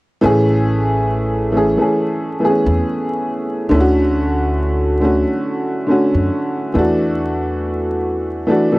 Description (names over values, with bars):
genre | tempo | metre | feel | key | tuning
hip hop | 69 BPM | 4/4 | swing 59% on 16ths | A major | A4 = 440 Hz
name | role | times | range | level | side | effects
clear upright piano | accompaniment | 0.2-8.8 s | D3 to G#4 | -15 LUFS | equal | cassette tape
upright bass | bass | 0.2-8.4 s | A1 to F#2 | -20 LUFS | equal | tube saturation
room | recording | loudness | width
light reverb | dry, gritty hardware recording, vinyl crackle | -14 LUFS | side -20 dB against mid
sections
0.2-8.8 A section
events
none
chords
0.2 Amaj7; 3.7 Dmaj7; 6.7 E9sus4